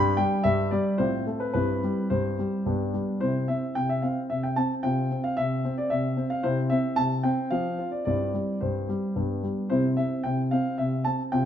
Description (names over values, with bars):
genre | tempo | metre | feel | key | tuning
classical-period piano sonatina | 110 BPM | 3/4 | straight | C major | A4 = 440 Hz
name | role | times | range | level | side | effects
warm concert grand piano | solo | 0.0-11.5 s | G2 to B5 | -24 LUFS | left 1 dB | none
room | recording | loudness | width
moderate large studio reverb, RT60 1.5 s | minimal, uncompressed stereo recording | -24 LUFS | side -9 dB against mid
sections
0.0-3.2 A section; 3.2-11.5 B section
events
none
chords
0.0 G5; 1.0 F/A; 1.5 C/G; 2.7 G; 3.2 C; 4.8 F5/C; 6.4 C; 7.5 F5; 8.1 C/G; 9.2 G; 9.7 C